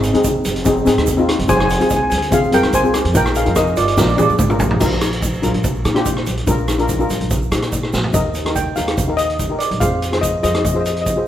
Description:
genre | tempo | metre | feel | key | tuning
calypso | 144 BPM | 4/4 | straight | unclear | A4 = 440 Hz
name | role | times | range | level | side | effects
steel pan | melody | 0.0-4.3, 8.1-11.2 s | F4 to Ab5 | -19 LUFS | equal | none
steel pan | accompaniment | 0.0-11.3 s | C4 to C5 | -19 LUFS | left 2 dB | none
upright bass | bass | 0.0-11.1 s | F1 to Bb2 | -21 LUFS | right 1 dB | none
street-band drum kit | drums | 0.0-11.2 s | crash cymbal, hi-hat, kick drum, rim click, snare drum, toms | -20 LUFS | equal | none
egg shaker | percussion | 0.0-11.2 s | none | -31 LUFS | right 8 dB | none
room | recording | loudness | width
moderate plate reverb, RT60 2.2 s | heard from further back in the room | -14 LUFS | side -11 dB against mid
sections
0.0-4.8 A section; 4.8-8.1 B section; 8.1-11.3 C section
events
drum fill 4.0-4.8, 7.9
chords
0.0 Ab; 1.5 Fm; 3.2 Bbsus4; 4.0 Bb; 8.1 Eb; 9.8 Fm

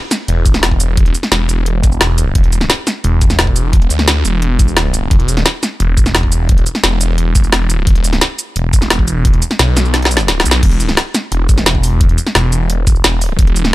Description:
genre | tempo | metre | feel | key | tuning
dark technical drum and bass | 174 BPM | 4/4 | straight | unclear | A4 = 440 Hz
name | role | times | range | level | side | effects
drum and bass drum kit | drums | 0.1-13.7 s | crash cymbal, hi-hat, shaker, snare drum | -14 LUFS | equal | overdrive
phased detuned saw bass | bass | 0.3-13.7 s | E1 to D2 | -14 LUFS | equal | phaser, sidechain pumping
electronic kick drum | drums | 0.5-13.5 s | none | -12 LUFS | equal | none
room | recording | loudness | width
little or no reverb | none | -10 LUFS | side -17 dB against mid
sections
0.0-13.7 A section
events
kick drops out 9.9-10.6; drum fill 9.9-10.6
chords
none

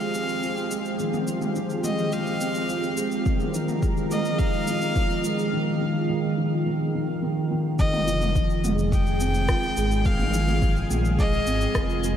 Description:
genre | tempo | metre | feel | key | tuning
piano and strings electronica | 106 BPM | 4/4 | straight | F minor | A4 = 440 Hz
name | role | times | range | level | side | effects
clear violin | melody | 0.0-12.0 s | Eb5 to G5 | -30 LUFS | left 1 dB | ping-pong delay
lush unison pad | sustained chords | 0.0-12.2 s | F3 to Bb4 | -35 LUFS | equal | chorus
felt-muted upright piano | riff | 0.0-12.2 s | Eb3 to F4 | -25 LUFS | right 1 dB | ensemble chorus, ping-pong delay
dark detuned saw bass | bass | 0.0-12.2 s | F1 to Bb1 | -26 LUFS | equal | sidechain pumping, high-pass filter
organic electronic drum kit | drums | 0.0-12.2 s | rim click, shaker, toms | -33 LUFS | equal | none
electronic kick drum | drums | 3.3-11.9 s | none | -24 LUFS | equal | none
room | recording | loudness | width
wet huge ambient reverb, RT60 8.5 s | dreamy mix soaked in reverb | -22 LUFS | side -9 dB against mid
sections
0.0-7.8 A section; 7.8-12.2 B section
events
build-up 0.0-7.8; drop 7.8-12.2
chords
0.0 Ab6/F; 7.8 Fm7

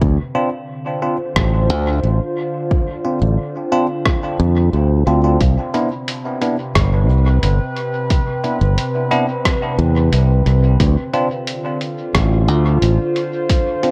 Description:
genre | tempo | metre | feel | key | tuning
ambient dub | 89 BPM | 4/4 | straight | D dorian | A4 = 436 Hz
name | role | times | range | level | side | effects
warbly tape-like pad | sustained chords | 0.2-13.9 s | C3 to C5 | -24 LUFS | equal | chorus, built-in reverb, phaser
modern bright fingered electric bass | bass | 0.0-13.0 s | G1 to F2 | -16 LUFS | equal | none
electronic kick drum | drums | 0.0-13.6 s | none | -20 LUFS | equal | overdrive, studio reverb
bell-like tine electric piano | stabs | 0.3-13.9 s | B3 to F4 | -24 LUFS | equal | phaser, dub echo
lo-fi sampler-style drum kit | drums | 1.4-13.9 s | hi-hat, rim click | -26 LUFS | equal | studio reverb, dub echo
room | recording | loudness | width
light reverb | none | -17 LUFS | mono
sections
0.0-13.9 A section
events
none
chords
0.0 Dm7; 5.4 Cmaj7; 10.8 Dm7

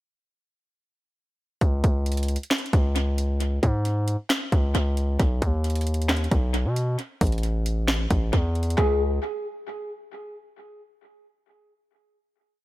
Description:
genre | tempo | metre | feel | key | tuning
hip hop, trap | 134 BPM | 4/4 | half-time | C# minor | A4 = 443 Hz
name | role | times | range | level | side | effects
distorted 808-style bass | bass | 1.6-9.2 s | A1 to B2 | -23 LUFS | equal | distortion
trap drum kit | drums | 1.6-8.9 s | handclaps, hi-hat, kick drum, snare drum | -25 LUFS | equal | tape echo
nylon-string guitar | melody | 8.8-9.0 s | G#4 | -28 LUFS | left 1 dB | low-pass filter, tape echo
room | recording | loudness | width
digital ambience | echo-heavy mix | -22 LUFS | side -17 dB against mid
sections
1.6-8.8 verse; 8.8-10.6 final chord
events
none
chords
1.6 C#5; 5.2 B; 7.0 A5; 8.8 C#5

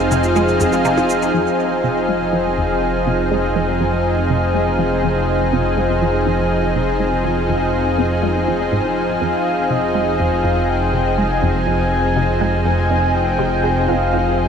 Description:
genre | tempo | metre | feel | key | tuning
ambient, sequencer-driven space music | 122 BPM | 4/4 | straight | F minor | A4 = 439 Hz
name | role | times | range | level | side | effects
lush unison pad | sustained chords | 0.0-14.5 s | F3 to F5 | -17 LUFS | equal | chorus
Celtic harp | arpeggios | 0.0-3.9 s | Eb4 to F5 | -26 LUFS | equal | auto-pan, ping-pong delay
fat analog bass | bass | 0.0-14.5 s | F1 | -22 LUFS | equal | none
resonant blip pluck | riff | 0.1-14.3 s | F2 to Ab3 | -24 LUFS | equal | phaser, analog chorus, ping-pong delay
shaker and percussion blips | percussion | 0.1-1.3 s | none | -29 LUFS | right 2 dB | overdrive, ping-pong delay
breathy flute-like synth lead | melody | 9.2-14.5 s | Eb5 to Ab5 | -22 LUFS | equal | wide subtle chorus, ping-pong delay
room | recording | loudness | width
wet huge ambient reverb, RT60 8.0 s | dreamy mix soaked in reverb | -15 LUFS | side -7 dB against mid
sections
0.0-1.3 A section; 1.3-14.5 B section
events
filter sweep on synth arpeggio sound 1.3-14.5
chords
0.0 Fm7

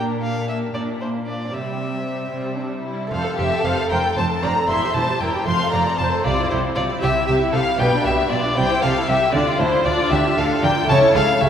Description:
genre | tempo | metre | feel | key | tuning
classical, baroque-style concerto movement with solo episodes | 77 BPM (dotted quarters) | 6/8 | straight | F major | A4 = 440 Hz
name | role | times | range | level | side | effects
rich chamber violin section | melody | 0.0-11.5 s | E4 to C6 | -26 LUFS | left 3 dB | none
rich violin | melody | 0.0-11.5 s | C5 to C6 | -24 LUFS | left 1 dB | none
rich chamber violin section | second line | 0.0-11.5 s | C4 to F5 | -24 LUFS | left 1 dB | none
lute | accompaniment | 0.0-11.5 s | E2 to A4 | -29 LUFS | right 1 dB | none
rich symphonic viola section | accompaniment | 0.0-11.5 s | G3 to C5 | -26 LUFS | right 1 dB | none
rich chamber cello section | bass | 0.0-11.5 s | E2 to D3 | -26 LUFS | right 2 dB | none
rich symphonic double bass section | bass | 3.1-11.5 s | E1 to D2 | -26 LUFS | right 2 dB | none
room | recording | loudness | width
wet scoring stage reverb, RT60 2.0 s | heard from further back in the room | -17 LUFS | side -8 dB against mid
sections
0.0-3.1 A section; 3.1-11.5 B section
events
none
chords
0.0 Gm/Bb; 1.5 C; 3.1 F; 4.7 C/E; 5.5 F; 6.2 C; 7.8 G/B; 8.6 C; 9.3 Dm; 10.9 A/C#

